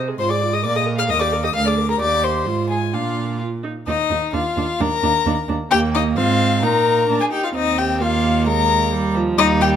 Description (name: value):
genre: quick classical-period movement for string quartet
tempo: 131 BPM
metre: 2/4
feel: straight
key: Eb major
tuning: A4 = 438 Hz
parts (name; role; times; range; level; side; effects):
- warm viola; accompaniment; 0.0-9.8 s; F3 to Bb4; -23 LUFS; right 4 dB; none
- warm cello; bass; 0.0-9.8 s; D2 to C3; -22 LUFS; right 4 dB; none
- warm violin; melody; 0.2-9.7 s; Eb5 to F6; -21 LUFS; left 8 dB; none
- warm violin; second line; 0.2-9.8 s; Eb4 to F5; -23 LUFS; left 2 dB; none
room: moderate large studio reverb, RT60 1.3 s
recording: none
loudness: -16 LUFS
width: side -9 dB against mid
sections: 0.0-3.9 A section; 3.9-9.8 B section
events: none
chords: 0.2 Fm/Ab; 0.6 Bbadd11; 1.1 Eb; 1.6 Bb7/D; 2.0 Eb; 2.5 Fm/Ab; 2.9 Bb; 3.9 N.C.; 4.3 Ebsus2; 5.7 Eb5; 6.2 Fm/Ab; 6.6 Eb5/Bb; 7.1 Bb; 7.6 Eb; 8.0 Bb5/Eb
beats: | 0.19 0.64 | 1.10 1.55 | 2.01 2.47 | 2.94 3.41 | 3.88 4.34 | 4.81 5.26 | 5.71 6.17 | 6.63 7.09 | 7.55 8.01 | 8.47 8.93 | 9.38